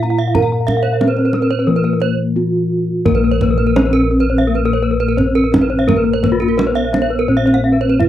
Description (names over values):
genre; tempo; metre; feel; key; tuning
Balinese gamelan; 85-94 BPM; 4/4; straight; Bb pelog; A4 = 436 Hz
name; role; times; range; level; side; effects
gamelan-type bronze metallophone; melody; 0.0-8.1 s; Bb3 to Bb4; -16 LUFS; left 1 dB; none
gamelan-type bronze metallophone; arpeggios; 0.0-8.1 s; Gb4-40c to Bb5; -21 LUFS; left 6 dB; none
gamelan-type bronze metallophone; arpeggios; 0.0-8.0 s; Gb4-40c to Gb5-40c; -22 LUFS; right 8 dB; none
gamelan-type bossed gongs; bass; 0.0-8.1 s; Bb1 to Bb4; -18 LUFS; equal; none
kendang; percussion; 0.0-8.1 s; none; -19 LUFS; right 2 dB; none
room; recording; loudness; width
little or no reverb; dry, close 1970s-style studio recording; -12 LUFS; side -12 dB against mid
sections
0.0-3.1 A section; 3.1-8.1 B section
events
break 2.0-3.1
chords
none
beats
| 0.35 1.00 1.67 2.35 | 3.05 3.76 4.46 5.17 | 5.88 6.58 7.29 7.99